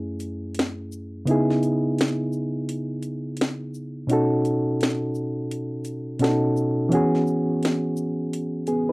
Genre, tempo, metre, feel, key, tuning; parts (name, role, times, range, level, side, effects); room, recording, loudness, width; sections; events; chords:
lo-fi hip hop; 85 BPM; 4/4; swing 58% on 16ths; C# minor; A4 = 440 Hz
bright reed electric piano; accompaniment; 0.0-8.9 s; F#2 to A4; -22 LUFS; equal; cassette tape, low-pass filter
techno drum kit; drums; 0.2-8.9 s; hi-hat, shaker, snare drum; -26 LUFS; equal
moderate studio ambience, RT60 0.5 s; dark, warm production; -22 LUFS; side -25 dB against mid
0.0-8.9 A section
break 0.0-8.9
0.0 F#m7; 1.3 C#m9; 4.1 B9; 6.9 E69